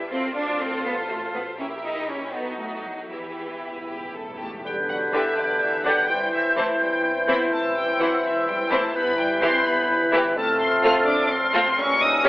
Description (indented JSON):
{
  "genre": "classical, dramatic, fast romantic movement for symphony orchestra",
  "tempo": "77-85 BPM (dotted quarters)",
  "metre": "6/8",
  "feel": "straight",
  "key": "E minor",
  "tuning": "A4 = 443 Hz",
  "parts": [
    { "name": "rich symphonic violin section", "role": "melody", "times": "0.0-12.3 s", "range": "A4 to F6", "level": "-28 LUFS", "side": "left 1 dB", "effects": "none" },
    { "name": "warm symphonic violin section", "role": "second line", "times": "0.0-12.3 s", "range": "E4 to C#5", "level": "-30 LUFS", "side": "left 1 dB", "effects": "none" },
    { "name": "clear symphonic viola section", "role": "accompaniment", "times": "0.0-12.3 s", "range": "D3 to F4", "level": "-28 LUFS", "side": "equal", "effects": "none" },
    { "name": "rich studio double bass section", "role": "bass", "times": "0.0-12.3 s", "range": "E1 to E2", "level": "-41 LUFS", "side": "right 1 dB", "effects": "none" },
    { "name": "warm symphonic cello section", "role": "bass", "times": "0.1-12.3 s", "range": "D3 to F4", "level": "-30 LUFS", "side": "equal", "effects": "none" },
    { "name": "timpani", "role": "percussion", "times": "3.1-4.6 s", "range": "E2", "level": "-46 LUFS", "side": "equal", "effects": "none" },
    { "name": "mellow bassoon", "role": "accompaniment", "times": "4.6-12.3 s", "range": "D3 to A3", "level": "-27 LUFS", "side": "equal", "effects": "none" },
    { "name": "large flute ensemble", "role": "second line", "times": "4.7-12.3 s", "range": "E6 to G6", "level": "-26 LUFS", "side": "equal", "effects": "none" },
    { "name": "mellow clarinet", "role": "second line", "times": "4.7-12.3 s", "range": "C4 to G4", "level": "-33 LUFS", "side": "left 1 dB", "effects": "none" },
    { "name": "warm oboe", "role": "second line", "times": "4.7-12.3 s", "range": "A4 to C5", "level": "-28 LUFS", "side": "equal", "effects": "none" },
    { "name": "mellow French horn section", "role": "sustained chords", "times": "4.7-12.3 s", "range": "E3 to E4", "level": "-29 LUFS", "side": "left 1 dB", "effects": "none" }
  ],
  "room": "wet scoring stage reverb, RT60 1.7 s",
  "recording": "telephone sound",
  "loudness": "-20 LUFS",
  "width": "side -19 dB against mid",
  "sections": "0.0-4.6 A section; 4.6-12.3 B section",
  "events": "timpani fill 3.1-4.6",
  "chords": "0.1 F/A; 1.6 A#dim7; 2.3 B7; 3.1 Em; 4.6 G; 6.1 C; 7.5 Am; 9.0 Em/G; 10.4 F/A; 11.8 A#dim7",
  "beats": "| 0.12 0.85 | 1.60 2.35 | 3.12 3.89 | 4.65 5.37 | 6.10 6.81 | 7.53 8.24 | 8.95 9.66 | 10.37 11.07 | 11.78"
}